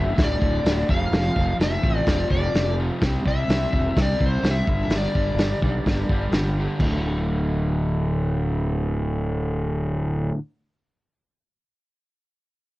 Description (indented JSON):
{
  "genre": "garage rock duo or trio",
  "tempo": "127 BPM",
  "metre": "4/4",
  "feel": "straight",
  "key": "unclear",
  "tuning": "A4 = 443 Hz",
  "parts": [
    { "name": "overdriven slide guitar", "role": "melody", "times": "0.0-6.3 s", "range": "C5 to F5", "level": "-27 LUFS", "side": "left 2 dB", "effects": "cassette tape" },
    { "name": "crunchy overdriven guitar", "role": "riff", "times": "0.0-10.4 s", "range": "D2 to C4", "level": "-27 LUFS", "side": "equal", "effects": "cassette tape" },
    { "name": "fuzz fingered electric bass", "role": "bass", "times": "0.0-10.3 s", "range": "D1 to C2", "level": "-24 LUFS", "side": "equal", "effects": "overdrive" },
    { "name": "vintage drum kit", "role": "drums", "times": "0.2-6.9 s", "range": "crash cymbal, hi-hat, kick drum, snare drum", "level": "-23 LUFS", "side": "equal", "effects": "cassette tape" }
  ],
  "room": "little or no reverb",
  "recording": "home recording on cassette",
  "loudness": "-20 LUFS",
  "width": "side -18 dB against mid",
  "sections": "0.0-6.8 A section; 6.8-10.6 B section",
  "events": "none",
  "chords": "0.0 D; 0.9 F5; 3.0 C; 4.7 G5; 6.8 D5"
}